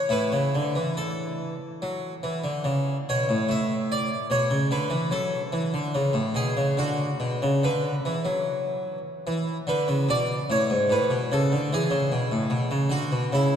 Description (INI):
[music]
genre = classical, baroque-style suite movement for harpsichord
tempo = 73 BPM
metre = 4/4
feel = rubato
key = A major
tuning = A4 = 439 Hz
[part]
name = harpsichord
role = solo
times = 0.0-13.6 s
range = G#2 to E5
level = -23 LUFS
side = equal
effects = none
[sound]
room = wet church reverb, RT60 3.4 s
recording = dark, warm production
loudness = -23 LUFS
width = side -8 dB against mid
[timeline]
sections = 0.0-3.5 A section; 3.5-13.6 B section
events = none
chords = 0.1 A; 5.1 F#m; 6.8 Bm; 10.1 Bm9; 11.7 E7 (rootless)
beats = | 0.12 0.97 1.83 2.66 | 3.50 4.32 5.12 5.93 | 6.76 7.62 8.44 9.26 | 10.07 10.89 11.71 12.51 | 13.31